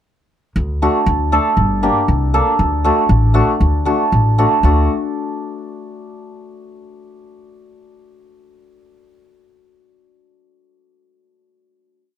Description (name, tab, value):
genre	klezmer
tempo	118 BPM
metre	2/4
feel	straight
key	unclear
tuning	A4 = 440 Hz
part	upright bass	bass	0.6-4.9 s	G1 to D2	-15 LUFS	equal	none
part	hammered dulcimer	accompaniment	0.8-4.9 s	A3 to A4	-16 LUFS	equal	none
room	little or no reverb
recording	close, detailed microphones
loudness	-13 LUFS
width	side -10 dB against mid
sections	0.6-4.6 A section; 4.6-5.6 final chord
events	none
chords	0.6 D5; 1.6 Gm; 2.6 D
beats	| 0.56 1.07 | 1.57 2.08 | 2.58 3.09 | 3.60 4.11 | 4.62